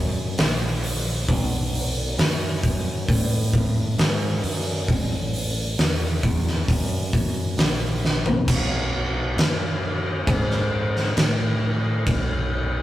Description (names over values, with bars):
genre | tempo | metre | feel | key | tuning
stoner and doom metal | 67 BPM | 4/4 | straight | unclear | A4 = 442 Hz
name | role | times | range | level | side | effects
growling fingered electric bass | bass | 0.0-12.8 s | A1 to A2 | -25 LUFS | equal | overdrive, tube saturation
oversized low-tuned drum kit | drums | 0.4-12.3 s | crash cymbal, hi-hat, kick drum, snare drum, toms | -22 LUFS | equal | none
room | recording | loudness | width
little or no reverb | rough rehearsal-room recording, warm saturation | -20 LUFS | side -14 dB against mid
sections
0.0-8.5 A section; 8.5-12.8 B section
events
drum fill 8.0-8.5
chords
none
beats
0.39 | 1.29 2.19 3.09 3.99 | 4.89 5.79 6.68 7.58 | 8.48 9.38 10.28 11.17 | 12.07